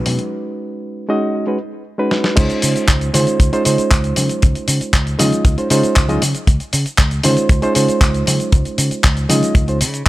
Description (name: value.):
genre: nu-disco, nu disco.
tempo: 117 BPM.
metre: 4/4.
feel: straight.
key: Db major.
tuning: A4 = 445 Hz.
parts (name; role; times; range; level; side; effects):
reed electric piano; accompaniment; 0.0-9.8 s; Ab3 to Eb5; -18 LUFS; right 1 dB; sidechain pumping, digital delay.
fingered electric bass; bass; 0.1-10.1 s; Db2 to Db3; -19 LUFS; equal; none.
dusty soul sampler-style drum kit; drums; 0.1-10.1 s; cabasa, crash cymbal, handclaps, hi-hat, snare drum; -19 LUFS; equal; none.
congas; percussion; 0.1-9.4 s; none; -26 LUFS; left 2 dB; none.
kick drum; drums; 2.4-10.1 s; none; -13 LUFS; equal; none.
room: small room ambience.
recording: none.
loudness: -13 LUFS.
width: side -17 dB against mid.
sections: 0.0-2.4 A section; 2.4-10.1 B section.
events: drum fill 2.1; drop 2.4-10.1.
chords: 0.0 Cb6; 2.4 Dbmaj7.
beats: | 0.32 0.84 1.35 1.86 | 2.37 2.89 3.40 3.91 | 4.43 4.94 5.45 5.96 | 6.48 6.99 7.50 8.02 | 8.53 9.04 9.55 10.07.